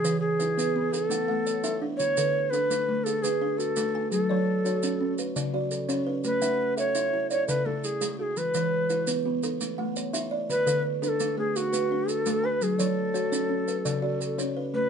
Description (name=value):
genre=southern african traditional, mbira-style interlocking cycle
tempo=113 BPM (dotted quarters)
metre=12/8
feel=straight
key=unclear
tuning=A4 = 440 Hz
part: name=Native American-style cedar flute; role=melody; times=0.0-14.9 s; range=F#4 to C#5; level=-26 LUFS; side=equal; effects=none
part: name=buzzing kalimba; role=arpeggios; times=0.0-14.9 s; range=C#3 to G#5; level=-31 LUFS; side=right 2 dB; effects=none
part: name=kalimba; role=arpeggios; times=0.0-14.9 s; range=C#3 to F#5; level=-30 LUFS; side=equal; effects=none
part: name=maracas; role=percussion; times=0.0-14.6 s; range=none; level=-36 LUFS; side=right 5 dB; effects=none
room=moderate studio reverb, RT60 0.6 s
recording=dark, warm production, nothing above 10.5 kHz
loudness=-24 LUFS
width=side -7 dB against mid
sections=0.0-14.7 A section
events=none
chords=0.0 E; 0.9 A; 2.0 D; 4.1 F#m; 6.2 A; 7.3 C#m; 8.4 E; 9.4 A; 10.5 D; 12.6 F#m